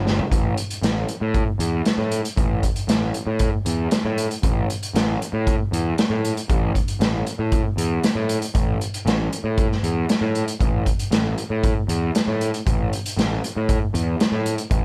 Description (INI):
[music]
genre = psychedelic rock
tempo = 117 BPM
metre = 4/4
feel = straight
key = unclear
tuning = A4 = 441 Hz
[part]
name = fuzz picked electric bass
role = bass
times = 0.0-14.8 s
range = G1 to A2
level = -25 LUFS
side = equal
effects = overdrive
[part]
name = vintage drum kit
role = drums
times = 0.1-14.8 s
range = hi-hat, kick drum, snare drum, toms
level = -24 LUFS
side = equal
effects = none
[sound]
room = little or no reverb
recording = none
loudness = -22 LUFS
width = mono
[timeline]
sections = 0.3-14.8 A section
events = drum fill 0.1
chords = none